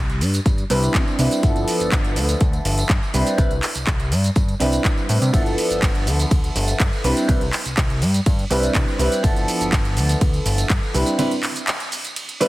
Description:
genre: filtered disco house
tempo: 123 BPM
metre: 4/4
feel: straight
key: unclear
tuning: A4 = 438 Hz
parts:
  - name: fat analog bass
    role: bass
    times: 0.0-11.0 s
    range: G1 to C3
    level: -22 LUFS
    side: equal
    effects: sidechain pumping
  - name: house drum kit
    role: drums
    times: 0.1-12.5 s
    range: handclaps, hi-hat, ride cymbal, shaker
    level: -25 LUFS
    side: right 1 dB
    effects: sidechain pumping on perc, sidechain pumping on hats, sidechain pumping on cymbals
  - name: tambourine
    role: percussion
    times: 0.1-12.4 s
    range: none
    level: -34 LUFS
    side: right 3 dB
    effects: sidechain pumping on perc
  - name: electronic kick drum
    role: drums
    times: 0.5-10.8 s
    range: none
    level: -19 LUFS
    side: equal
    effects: none
  - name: warm grand piano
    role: accompaniment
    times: 0.7-12.5 s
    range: F3 to B4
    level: -22 LUFS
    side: right 1 dB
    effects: phaser, vintage 12-bit sampler grit, sidechain pumping
room: light reverb, digital ambience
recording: heavily compressed radio sound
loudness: -17 LUFS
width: side -18 dB against mid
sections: 0.0-12.5 A section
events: break 11.2-12.5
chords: 0.0 Cmaj9; 1.4 G13; 3.1 Cmaj9; 5.3 G13; 7.0 Cmaj9; 9.2 G13; 10.9 Cmaj9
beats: 0.46 0.94 | 1.43 1.92 2.41 2.90 | 3.38 3.87 4.36 4.85 | 5.33 5.82 6.31 6.80 | 7.29 7.77 8.26 8.75 | 9.24 9.73 10.21 10.70 | 11.19 11.68 12.16

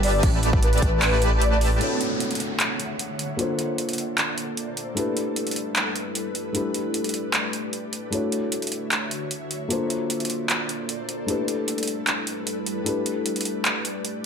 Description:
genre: future bass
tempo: 152 BPM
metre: 4/4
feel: half-time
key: D major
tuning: A4 = 441 Hz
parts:
  - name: breathy flute-like synth lead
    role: melody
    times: 0.0-1.6 s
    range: B4 to D5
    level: -27 LUFS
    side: left 1 dB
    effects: ensemble chorus, sidechain pumping, ping-pong delay
  - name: soft supersaw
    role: riff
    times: 0.0-1.8 s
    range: G3 to A5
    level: -26 LUFS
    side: right 1 dB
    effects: lush chorus, sidechain pumping, low-pass filter, dub echo
  - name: wide detuned saw bass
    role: bass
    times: 0.0-1.8 s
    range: G1 to A1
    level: -22 LUFS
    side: equal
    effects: chorus, sidechain pumping
  - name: big-room dance drum kit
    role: drums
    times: 0.0-14.1 s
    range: crash cymbal, handclaps, hi-hat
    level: -26 LUFS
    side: right 1 dB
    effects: overdrive
  - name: electronic kick drum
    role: drums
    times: 0.2-0.9 s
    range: none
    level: -21 LUFS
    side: equal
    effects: overdrive
  - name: felt-muted upright piano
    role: accompaniment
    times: 1.8-14.3 s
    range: A3 to C#5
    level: -28 LUFS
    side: left 2 dB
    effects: sidechain pumping, dub echo
  - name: ethereal airy pad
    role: sustained chords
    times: 2.3-14.3 s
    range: D3 to F#5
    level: -32 LUFS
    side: equal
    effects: ensemble chorus, built-in reverb, tremolo, vintage 12-bit sampler grit, sidechain pumping
  - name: downlifter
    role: sound effects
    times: 1.8-5.0 s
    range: none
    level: -30 LUFS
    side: right 3 dB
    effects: none
room: moderate digital room reverb, RT60 1.2 s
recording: none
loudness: -22 LUFS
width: side -7 dB against mid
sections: 0.0-1.8 A section; 1.8-14.3 B section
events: drop 0.0-1.8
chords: 0.2 A9sus4; 1.8 Dmaj9; 3.4 Bbmaj9; 5.0 G69; 6.5 A9sus4; 8.1 Dmaj9; 9.7 Bbmaj9; 11.3 G69; 12.9 A9sus4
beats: | 0.23 0.63 1.02 1.42 | 1.81 2.21 2.60 2.99 | 3.39 3.78 4.18 4.57 | 4.97 5.36 5.76 6.15 | 6.55 6.94 7.34 7.73 | 8.13 8.52 8.91 9.31 | 9.71 10.10 10.49 10.89 | 11.28 11.68 12.07 12.47 | 12.86 13.26 13.65 14.05

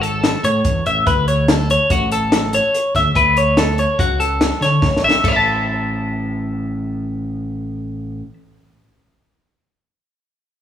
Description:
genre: math rock and midwest emo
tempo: 144 BPM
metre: 5/4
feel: straight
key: A major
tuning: A4 = 439 Hz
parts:
  - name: twelve-string electric guitar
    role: arpeggios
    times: 0.0-8.3 s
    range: F#4 to A5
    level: -17 LUFS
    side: left 1 dB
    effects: none
  - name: growling fingered electric bass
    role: bass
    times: 0.0-8.2 s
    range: G#1 to D3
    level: -21 LUFS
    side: equal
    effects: overdrive
  - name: compact cocktail drum kit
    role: drums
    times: 0.0-5.3 s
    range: crash cymbal, hi-hat, kick drum, snare drum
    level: -19 LUFS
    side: left 1 dB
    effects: none
room: moderate large studio reverb, RT60 1.5 s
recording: band playing live in one room, studio ambience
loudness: -15 LUFS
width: side -10 dB against mid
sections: 0.0-5.2 A section; 5.2-9.4 B section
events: drum fill 4.8-5.2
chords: 0.0 Amaj7; 1.1 Dmaj7; 5.2 A5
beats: 0.24 0.66 | 1.07 1.49 1.91 2.32 2.74 | 3.15 3.57 3.99 4.40 4.82 | 5.24 5.65 6.07 6.49 6.90 | 7.32 7.73 8.15

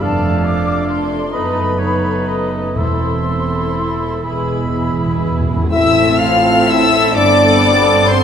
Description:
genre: classical, slow romantic movement for symphony orchestra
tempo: 39-47 BPM (dotted quarters)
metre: 6/8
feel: rubato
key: A minor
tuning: A4 = 440 Hz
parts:
  - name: warm chamber violin section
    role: melody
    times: 0.0-8.2 s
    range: B4 to F6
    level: -20 LUFS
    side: left 6 dB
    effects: none
  - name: bright flute section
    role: second line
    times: 0.0-8.2 s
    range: C5 to D6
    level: -22 LUFS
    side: left 2 dB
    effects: none
  - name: clear oboe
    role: second line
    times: 0.0-5.4 s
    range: C#5 to F5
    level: -27 LUFS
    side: right 1 dB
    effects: none
  - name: dark studio violin section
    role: second line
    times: 0.0-8.2 s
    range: G#4 to F5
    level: -25 LUFS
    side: left 2 dB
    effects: none
  - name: warm clarinet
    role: second line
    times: 0.0-8.2 s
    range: G#4 to F5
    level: -22 LUFS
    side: left 1 dB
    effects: none
  - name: dark studio viola section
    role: accompaniment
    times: 0.0-8.2 s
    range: B3 to A4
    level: -22 LUFS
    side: right 2 dB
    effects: none
  - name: mellow French horn section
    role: sustained chords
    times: 0.0-8.2 s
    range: G#3 to F4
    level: -20 LUFS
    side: left 3 dB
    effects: none
  - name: dark studio double bass section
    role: bass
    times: 0.0-8.2 s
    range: E1 to A1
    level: -23 LUFS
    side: right 3 dB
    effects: none
  - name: warm studio cello section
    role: bass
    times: 0.0-8.2 s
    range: E2 to A2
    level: -21 LUFS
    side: right 4 dB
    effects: none
  - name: timpani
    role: percussion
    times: 2.8-5.7 s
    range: E2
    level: -23 LUFS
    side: equal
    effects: none
  - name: bright trombone section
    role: sustained chords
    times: 5.7-8.2 s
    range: A2 to C4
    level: -24 LUFS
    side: right 5 dB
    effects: none
  - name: mellow trumpet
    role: stabs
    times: 5.7-8.2 s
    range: A4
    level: -21 LUFS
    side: right 1 dB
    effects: none
room: wet concert hall reverb, RT60 2.2 s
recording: none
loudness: -12 LUFS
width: side -8 dB against mid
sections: 0.0-5.7 A section; 5.7-8.2 B section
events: timpani fill 4.2-5.7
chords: 0.0 Dm/F; 1.3 B7/F#; 2.8 Am/E; 4.2 E; 5.7 Am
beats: | 0.02 1.33 | 2.76 4.24 | 5.72 7.16

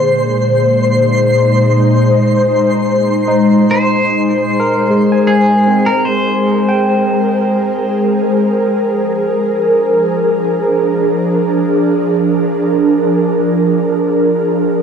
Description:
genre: ambient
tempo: free time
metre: none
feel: none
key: unclear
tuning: A4 = 439 Hz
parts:
  - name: ethereal airy pad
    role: sustained chords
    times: 0.0-14.8 s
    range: Bb2 to C5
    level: -11 LUFS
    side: equal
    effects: ensemble chorus, built-in reverb, cassette tape
  - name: barky tine electric piano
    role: arpeggios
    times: 0.0-9.6 s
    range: Ab3 to Ab5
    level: -20 LUFS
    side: right 1 dB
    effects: medium stereo tremolo, cassette tape, analog delay
  - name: twinkling granular texture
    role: texture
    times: 0.0-8.4 s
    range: C6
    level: -25 LUFS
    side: right 2 dB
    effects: built-in reverb, cassette tape
  - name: pedal steel guitar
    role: melody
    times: 3.7-8.0 s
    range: Ab4 to C5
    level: -17 LUFS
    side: equal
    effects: cassette tape, analog delay
room: wet booth ambience, RT60 0.2 s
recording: home recording on cassette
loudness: -11 LUFS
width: side -7 dB against mid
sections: 0.0-8.4 A section; 8.4-14.8 B section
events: fade-in on tine electric piano 0.0-8.4; fade-out on synth texture 0.0-8.4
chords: 0.0 Bb9sus4; 3.7 Abmaj9; 8.4 Bb7/F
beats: free time

